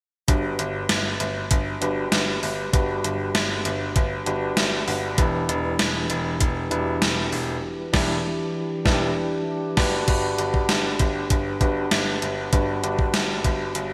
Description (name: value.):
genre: 1980s-style pop.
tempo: 98 BPM.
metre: 4/4.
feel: straight.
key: G major.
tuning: A4 = 441 Hz.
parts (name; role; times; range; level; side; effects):
tine electric piano; accompaniment; 0.3-13.9 s; G2 to F#5; -28 LUFS; equal; none.
clear baby grand piano; bass; 0.3-13.9 s; E1 to G1; -31 LUFS; equal; none.
gated 80s digital drum machine; drums; 0.3-13.9 s; crash cymbal, hi-hat, kick drum, snare drum; -26 LUFS; equal; gated reverb, gated reverb snare.
room: moderate lush hall reverb, RT60 3.3 s.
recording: bright 1980s-style digital production.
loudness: -23 LUFS.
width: mono.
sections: 0.3-10.1 A section; 10.1-13.9 B section.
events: band accent 7.6-10.1; tine electric piano fill 13.8.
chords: 0.3 Gmaj7; 5.2 Em7; 9.8 Gmaj7.